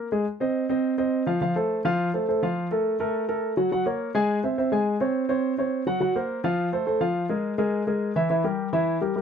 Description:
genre	jazz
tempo	209 BPM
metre	4/4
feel	straight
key	unclear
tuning	A4 = 440 Hz
part	warm grand piano	solo	0.0-9.2 s	E3 to Ab5	-23 LUFS	equal	none
room	light reverb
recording	none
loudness	-23 LUFS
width	side -7 dB against mid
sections	0.3-9.2 A section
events	none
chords	0.3 F5; 1.4 F; 2.6 Bb5; 3.7 Gbadd9; 4.3 Abaug; 4.9 Db5; 6.0 Gbmaj7#11; 6.6 F; 7.2 Bb5; 8.3 Edim

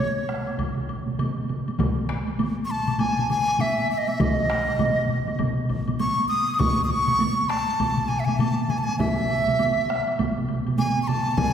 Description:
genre	japanese traditional, taiko drum ensemble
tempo	100 BPM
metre	4/4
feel	swing 60% on 16ths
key	G# miyako bushi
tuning	A4 = 440 Hz
part	breathy bright large dizi	melody	0.0-11.5 s	C#5 to D#6	-24 LUFS	equal	none
part	solo taiko drums	percussion	0.3-11.3 s	none	-29 LUFS	right 2 dB	none
part	woodblock	percussion	0.3-11.5 s	none	-39 LUFS	left 3 dB	none
part	taiko ensemble	percussion	0.5-11.5 s	none	-28 LUFS	right 2 dB	none
part	taiko ensemble	percussion	0.6-11.5 s	none	-30 LUFS	left 1 dB	none
part	taiko ensemble	percussion	1.8-11.5 s	none	-28 LUFS	left 3 dB	none
room	wet concert hall reverb, RT60 2.3 s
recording	heard from further back in the room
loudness	-21 LUFS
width	side -8 dB against mid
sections	0.0-11.5 A section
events	none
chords	none

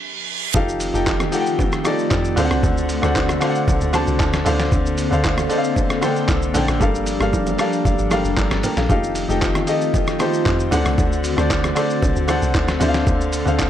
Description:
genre	amapiano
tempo	115 BPM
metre	4/4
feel	straight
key	unclear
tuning	A4 = 439 Hz
part	reverse cymbal	sound effects	0.0-0.5 s	none	-24 LUFS	right 7 dB	none
part	clear concert grand piano	accompaniment	0.5-13.7 s	D3 to Bb5	-21 LUFS	left 1 dB	none
part	airy breathy pad	sustained chords	0.5-13.7 s	D3 to A4	-24 LUFS	equal	chorus, sidechain pumping
part	deep log drum bass	bass	0.5-13.7 s	F1 to F2	-23 LUFS	equal	none
part	lo-fi sampler-style drum kit	drums	0.5-13.7 s	handclaps, hi-hat, kick drum, rim click, shaker, snare drum	-23 LUFS	equal	vintage 12-bit sampler grit
part	congas and bongos	percussion	0.5-13.7 s	none	-27 LUFS	right 3 dB	none
room	digital ambience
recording	dry, gritty hardware recording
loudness	-16 LUFS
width	side -10 dB against mid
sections	0.5-13.7 A section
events	reverse cymbal 0.0-0.5; stop 0.0-0.5; drop 0.5-13.7; grand piano fill 3.9-4.7, 7.3-8.9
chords	0.0 N.C.; 0.5 F7; 2.4 D7; 4.5 Bbmaj9/D; 6.8 Gm7; 8.9 F7; 10.7 D7; 12.8 Bbmaj9/D

